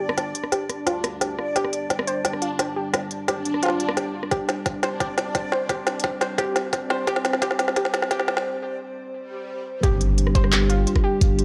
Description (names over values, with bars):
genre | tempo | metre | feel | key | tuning
half-time drum and bass | 174 BPM | 4/4 | half-time | unclear | A4 = 440 Hz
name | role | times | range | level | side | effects
dark analog pad | sustained chords | 0.0-11.4 s | G3 to C5 | -33 LUFS | equal | chorus, sidechain pumping
warbly dusty pluck | arpeggios | 0.0-11.2 s | F4 to C5 | -31 LUFS | equal | chorus, phaser, tape echo
saturated sub bass | bass | 0.0-11.4 s | G1 to D2 | -30 LUFS | equal | tube saturation, high-pass filter
backwards swelling texture | texture | 0.0-8.5 s | D4 to D5 | -34 LUFS | equal | built-in reverb
organic electronic drum kit | drums | 0.1-11.4 s | handclaps, hi-hat, rim click, snare drum | -27 LUFS | equal | small room reverb
electronic kick drum | drums | 4.3-11.3 s | none | -24 LUFS | equal | small room reverb
swell and impact | sound effects | 9.3-11.2 s | none | -36 LUFS | equal | none
room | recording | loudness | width
light reverb, digital ambience | dry, gritty hardware recording, cassette tape, high-pass filter | -24 LUFS | mono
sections
0.0-9.8 A section; 9.8-11.4 B section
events
build-up 0.0-9.8; drum fill 0.0-8.5; filter sweep on analog synth pad 0.0-9.8; filter sweep on synth pluck 0.0-9.8; break 8.5-9.8; swell 9.3-9.8; drop 9.8-11.4; impact 9.8-11.2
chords
0.0 G5